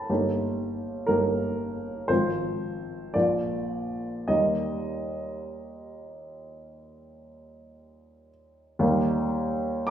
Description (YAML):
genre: classical, romantic character piece for solo piano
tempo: 50-62 BPM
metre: 4/4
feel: rubato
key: Eb major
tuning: A4 = 441 Hz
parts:
  - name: warm upright piano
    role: solo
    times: 0.0-9.9 s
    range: G1 to D6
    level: -25 LUFS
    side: equal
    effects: none
room: wet recital hall reverb, RT60 1.5 s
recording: heard from further back in the room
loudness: -25 LUFS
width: side -10 dB against mid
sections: 0.0-8.8 A section; 8.8-9.9 A section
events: none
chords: 0.1 Eb/G; 2.1 Fm/Ab; 3.1 Bb; 4.3 Eb